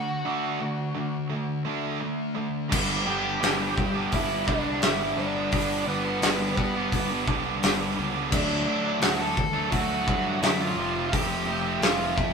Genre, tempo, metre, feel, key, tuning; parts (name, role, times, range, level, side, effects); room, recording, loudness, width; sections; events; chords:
quiet-loud alternative rock; 86 BPM; 4/4; straight; G major; A4 = 439 Hz
smooth overdriven lead guitar; melody; 0.0-12.3 s; B3 to A5; -30 LUFS; equal
twelve-string electric guitar; arpeggios; 0.0-2.7 s; D3 to D4; -40 LUFS; left 2 dB; phaser
thick fuzz guitar; riff; 0.0-12.3 s; F2 to D4; -32 LUFS; left 7 dB; distortion
tight distorted guitar; riff; 0.0-12.3 s; F2 to D4; -29 LUFS; right 8 dB; distortion
fuzz picked electric bass; bass; 2.7-12.3 s; F1 to G2; -34 LUFS; equal; overdrive
big rock drum kit; drums; 2.7-12.3 s; crash cymbal, hi-hat, kick drum, snare drum; -27 LUFS; left 1 dB
moderate stone room reverb, RT60 1.2 s; band playing live in one room; -23 LUFS; side -5 dB against mid
0.0-2.7 A section; 2.7-12.3 B section
break 0.0-2.7
0.0 D; 2.7 G; 8.3 D; 10.8 F